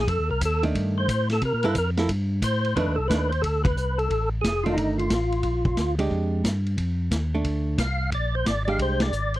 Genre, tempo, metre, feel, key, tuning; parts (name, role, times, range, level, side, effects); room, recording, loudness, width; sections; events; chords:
soul jazz organ trio; 179 BPM; 4/4; swing 65% on 8ths; F mixolydian; A4 = 440 Hz
percussive tonewheel organ; melody; 0.0-9.4 s; Eb4 to F5; -26 LUFS; equal; slow rotary speaker, overdrive, chorus vibrato
tonewheel organ; bass; 0.0-9.4 s; F1 to C3; -26 LUFS; equal; overdrive, chorus vibrato, slow rotary speaker
vintage drum kit; drums; 0.1-9.4 s; hi-hat, kick drum, ride cymbal, snare drum; -27 LUFS; equal
archtop guitar, miked and amplified; accompaniment; 0.6-9.1 s; Eb3 to A4; -26 LUFS; right 3 dB
little or no reverb; dry, close 1970s-style studio recording; -22 LUFS; side -15 dB against mid
0.0-2.8 A section; 2.8-9.4 B section
tonewheel organ solo 0.0-2.8; band accent 3.6, 9.0
0.1 F13; 1.4 C6; 2.8 F13; 5.4 Bb6; 6.8 F6; 8.1 Bb13